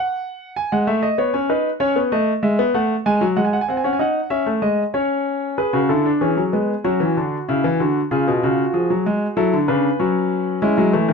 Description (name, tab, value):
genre	classical, baroque-style 3-part fugue for grand piano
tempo	96 BPM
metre	4/4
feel	straight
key	F# minor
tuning	A4 = 440 Hz
part	clear concert grand piano	solo	0.0-11.1 s	B2 to G#5	-17 LUFS	left 1 dB	none
room	light reverb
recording	close, detailed microphones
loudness	-17 LUFS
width	side -5 dB against mid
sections	0.0-5.6 A section; 5.6-11.1 B section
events	none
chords	0.0 N.C.; 0.6 C#m/G#; 3.1 G#7(no3); 4.3 C#m; 5.6 F#m; 6.9 Dmaj9; 8.1 C#7; 9.4 F#m; 10.6 C#m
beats	| 0.57 1.18 1.80 2.43 | 3.05 3.68 4.30 4.94 | 5.58 6.22 6.85 7.49 | 8.12 8.74 9.37 9.99 | 10.62